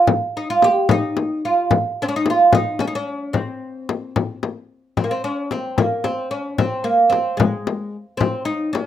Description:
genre	Persian modal ensemble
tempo	74 BPM (dotted quarters)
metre	6/8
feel	straight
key	C dastgah shur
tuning	A4 = 440 Hz
part	oud	melody	0.0-8.9 s	Ab3 to G4	-18 LUFS	right 2 dB	none
part	frame drum	percussion	0.1-8.9 s	none	-20 LUFS	left 5 dB	none
room	moderate studio reverb, RT60 0.6 s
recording	rough home demo mix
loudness	-17 LUFS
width	side -11 dB against mid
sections	0.0-5.0 A section; 5.0-8.9 B section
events	none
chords	none

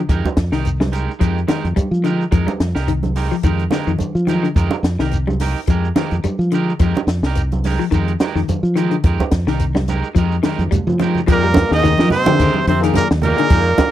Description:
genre	afrobeat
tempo	107 BPM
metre	4/4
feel	swing 55% on 16ths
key	F dorian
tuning	A4 = 440 Hz
part	clean electric guitar	arpeggios	0.0-13.6 s	D3 to G3	-22 LUFS	left 8 dB	vibrato effect
part	electric guitar at the edge of break-up	stabs	0.1-13.7 s	Ab3 to Bb4	-25 LUFS	right 8 dB	none
part	fingered electric bass	bass	0.1-13.8 s	C2 to F3	-18 LUFS	equal	none
part	compact cocktail drum kit	drums	0.1-13.9 s	hi-hat, kick drum, snare drum	-18 LUFS	equal	none
part	congas	percussion	0.1-13.9 s	none	-22 LUFS	right 5 dB	none
part	shekere	percussion	0.1-13.9 s	none	-23 LUFS	left 1 dB	none
part	bright trumpet	melody	11.3-13.9 s	Bb4 to Eb5	-18 LUFS	right 4 dB	none
part	breathy tenor saxophone	second line	11.3-13.9 s	Bb3 to Eb4	-25 LUFS	right 4 dB	none
part	brilliant bass trombone	second line	11.3-13.9 s	Bb2 to Eb3	-24 LUFS	left 8 dB	none
part	barky tine electric piano	accompaniment	11.7-13.6 s	Bb3 to Ab4	-22 LUFS	left 10 dB	none
room	little or no reverb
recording	dry, close 1970s-style studio recording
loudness	-14 LUFS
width	side -12 dB against mid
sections	0.0-11.3 A section; 11.3-13.9 B section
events	drum fill 10.4-11.3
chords	0.0 Fm11

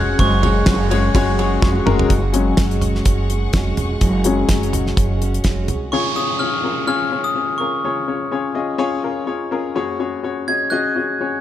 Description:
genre	piano-driven pop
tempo	125 BPM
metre	4/4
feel	swing 56% on 16ths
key	unclear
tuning	A4 = 440 Hz
part	glockenspiel with brass mallets	melody	0.0-1.1, 5.9-11.2 s	Db6 to Ab6	-23 LUFS	right 1 dB	dub echo
part	mellow French horn section	second line	0.0-1.9 s	Gb3 to Ab4	-30 LUFS	right 1 dB	none
part	clear upright piano	accompaniment	0.0-11.4 s	Gb1 to Eb5	-21 LUFS	left 6 dB	none
part	warm studio string section	sustained chords	0.0-5.9 s	Ab4 to Db6	-33 LUFS	left 4 dB	none
part	picked steel-string acoustic guitar	riff	0.0-5.9 s	Gb3 to Gb4	-26 LUFS	right 6 dB	none
part	upright bass	bass	0.0-5.9 s	F1 to C2	-20 LUFS	equal	none
part	damped 70s drum kit	drums	0.2-5.8 s	hi-hat, kick drum, ride cymbal, snare drum, toms	-18 LUFS	right 1 dB	none
part	downlifter	sound effects	5.9-9.8 s	none	-28 LUFS	right 1 dB	none
room	light reverb, studio reverb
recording	echo-heavy mix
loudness	-16 LUFS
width	side -12 dB against mid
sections	0.0-2.1 A section; 2.1-5.9 B section; 5.9-11.4 C section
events	drum fill 1.6-2.1; upright piano solo 2.1-5.9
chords	0.0 Gbsus2; 5.9 Db; 9.8 Gbsus2

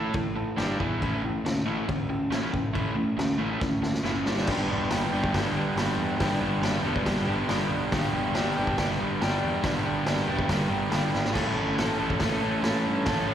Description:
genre	garage rock duo or trio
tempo	140 BPM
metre	4/4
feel	straight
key	unclear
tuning	A4 = 442 Hz
part	crunchy overdriven guitar	riff	0.0-13.3 s	G2 to A4	-26 LUFS	equal	slapback echo
part	fuzz picked electric bass	bass	0.0-13.3 s	E1 to G2	-32 LUFS	equal	overdrive
part	raw garage drum kit	drums	0.1-13.2 s	crash cymbal, hi-hat, kick drum, snare drum, splash cymbal	-30 LUFS	equal	none
room	light reverb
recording	live gig heard through the venue's PA, recital hall reverb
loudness	-24 LUFS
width	side -10 dB against mid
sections	0.0-4.5 A section; 4.5-13.3 B section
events	drum fill 3.6-4.5, 11.1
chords	0.0 A5; 0.6 G5; 0.8 E5; 1.0 A; 4.3 G5; 4.5 G; 11.4 A

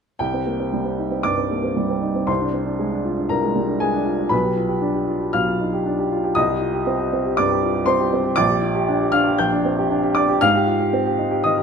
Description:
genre	classical, virtuoso piano study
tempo	118 BPM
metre	4/4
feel	rubato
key	C minor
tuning	A4 = 439 Hz
part	warm baby grand piano	solo	0.2-11.6 s	Bb1 to G6	-18 LUFS	equal	none
room	moderate recital hall reverb, RT60 1.9 s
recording	close, detailed microphones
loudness	-18 LUFS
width	side -6 dB against mid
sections	0.2-11.6 A section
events	none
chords	0.2 Cm; 2.3 Dm7b5/C; 4.3 G7/B; 6.4 Cm; 8.4 Gm/Bb; 10.4 Abmaj7

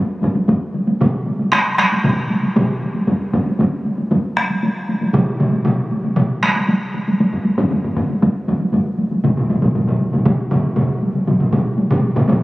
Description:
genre	japanese traditional, taiko drum ensemble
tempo	117 BPM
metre	4/4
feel	straight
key	none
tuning	none
part	taiko ensemble	percussion	0.2-12.4 s	none	-19 LUFS	equal	none
part	taiko ensemble	percussion	0.2-12.4 s	none	-22 LUFS	equal	none
part	taiko ensemble	percussion	1.0-12.4 s	none	-18 LUFS	equal	none
room	wet huge ambient reverb, RT60 4.0 s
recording	recorded on a phone in the room, studio reverb, compression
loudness	-15 LUFS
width	side -19 dB against mid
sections	0.0-11.3 A section; 11.3-12.4 B section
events	speeding up 0.0-12.4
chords	none

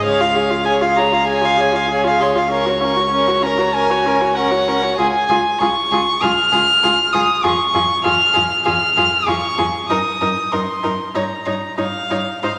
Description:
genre	quick classical-period movement for string quartet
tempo	97 BPM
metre	4/4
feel	straight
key	Db major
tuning	A4 = 441 Hz
part	warm violin	melody	0.0-12.6 s	F5 to F6	-19 LUFS	equal	none
part	warm violin	second line	0.0-12.5 s	Ab4 to F5	-22 LUFS	equal	none
part	warm viola	accompaniment	0.0-12.5 s	Db4 to Ab4	-23 LUFS	equal	none
part	dark cello	bass	0.0-12.5 s	Db2 to Ab2	-30 LUFS	equal	none
room	wet recital hall reverb, RT60 1.8 s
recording	none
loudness	-16 LUFS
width	mono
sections	0.0-12.6 A section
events	none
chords	0.0 Db; 2.5 Gb/Db; 5.0 Db; 7.4 Db/F; 9.9 Ebm/Gb; 11.1 Eb7/G

